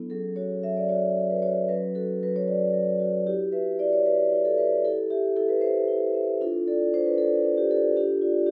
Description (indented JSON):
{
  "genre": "classical, contemporary piece for solo vibraphone",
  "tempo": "76 BPM (dotted quarters)",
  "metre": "6/8",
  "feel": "rubato",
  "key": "F# minor",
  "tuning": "A4 = 441 Hz",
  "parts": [
    { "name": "vibraphone with soft mallets", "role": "solo", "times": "0.0-8.5 s", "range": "F#3 to E5", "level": "-25 LUFS", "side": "equal", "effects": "none" }
  ],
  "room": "moderate large studio reverb, RT60 1.2 s",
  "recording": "none",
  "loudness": "-25 LUFS",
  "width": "mono",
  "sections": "0.1-8.5 A section",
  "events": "none",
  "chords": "0.1 F#sus2; 1.7 Dmaj7/F#; 3.3 Esus2; 4.8 C/E; 6.4 Dsus2; 8.0 Bbmaj7/D (rootless)",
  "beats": "| 0.10 0.89 | 1.70 2.49 | 3.27 4.06 | 4.84 5.63 | 6.41 7.18 | 7.96"
}